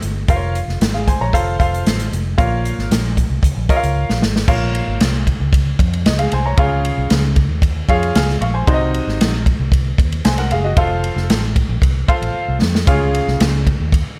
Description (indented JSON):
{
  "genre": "uptempo 1960s-style soul",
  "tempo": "114 BPM",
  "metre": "4/4",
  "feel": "straight",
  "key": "Bb minor",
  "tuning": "A4 = 440 Hz",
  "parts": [
    { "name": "vintage muted fingered electric bass", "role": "bass", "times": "0.0-14.0 s", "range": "F1 to F2", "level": "-22 LUFS", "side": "equal", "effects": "none" },
    { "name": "swinging big-band drum kit", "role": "drums", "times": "0.0-14.1 s", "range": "crash cymbal, hi-hat, kick drum, ride cymbal, snare drum", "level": "-20 LUFS", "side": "equal", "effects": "none" },
    { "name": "clear baby grand piano", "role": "accompaniment", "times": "0.3-13.6 s", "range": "Bb2 to F6", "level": "-22 LUFS", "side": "equal", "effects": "none" }
  ],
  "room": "light reverb",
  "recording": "none",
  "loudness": "-17 LUFS",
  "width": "mono",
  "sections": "0.0-4.5 A section; 4.5-14.2 A section",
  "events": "drum fill 4.0-4.5, 12.3-12.9",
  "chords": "0.3 Bbm/F; 1.3 F; 2.4 Bbm; 6.6 Db; 8.7 Cdim; 10.8 F; 12.9 Db"
}